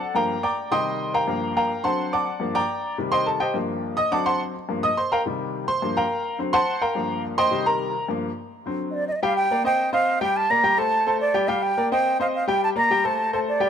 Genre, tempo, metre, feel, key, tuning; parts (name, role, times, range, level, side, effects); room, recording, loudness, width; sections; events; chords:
latin; 212 BPM; 4/4; straight; G minor; A4 = 440 Hz
clear upright piano; accompaniment; 0.0-13.7 s; G2 to Eb6; -22 LUFS; left 1 dB
concert flute; melody; 8.9-13.7 s; D5 to Bb5; -21 LUFS; right 2 dB
light reverb; -20 LUFS; side -8 dB against mid
0.0-9.2 A section; 9.2-13.7 B section
upright piano solo 0.0-9.2
0.1 Gm7; 0.7 Cm; 1.3 Gm7; 1.9 D7; 2.4 Gm7; 3.0 Cm; 3.6 Gm7; 4.1 D7; 4.7 Gm7; 5.3 Cm; 5.8 Gm7; 6.4 D7; 7.0 Gm7; 7.5 Cm; 8.1 Gm7; 8.7 D7; 9.2 Gm; 9.8 Cm; 10.4 Gm; 10.9 D5; 11.5 Gm; 12.1 Cm; 12.6 Gm; 13.2 D5